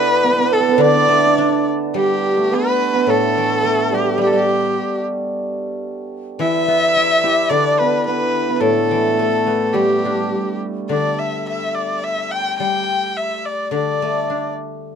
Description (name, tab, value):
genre	chinese traditional, Chinese chamber ensemble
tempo	107 BPM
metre	4/4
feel	rubato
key	D zhi mode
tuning	A4 = 440 Hz
part	clear erhu	melody	0.0-14.5 s	G4 to G5	-19 LUFS	equal	none
part	hammered dulcimer	second line	0.0-15.0 s	G3 to G4	-20 LUFS	right 4 dB	none
part	mellow hollow large dizi	second line	0.0-14.5 s	G4 to G5	-23 LUFS	left 6 dB	none
part	guzheng	accompaniment	0.0-15.0 s	A2 to G4	-22 LUFS	left 3 dB	none
room	moderate booth ambience, RT60 0.2 s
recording	dark, warm production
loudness	-15 LUFS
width	side -7 dB against mid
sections	0.0-2.0 A section; 2.0-15.0 B section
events	none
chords	none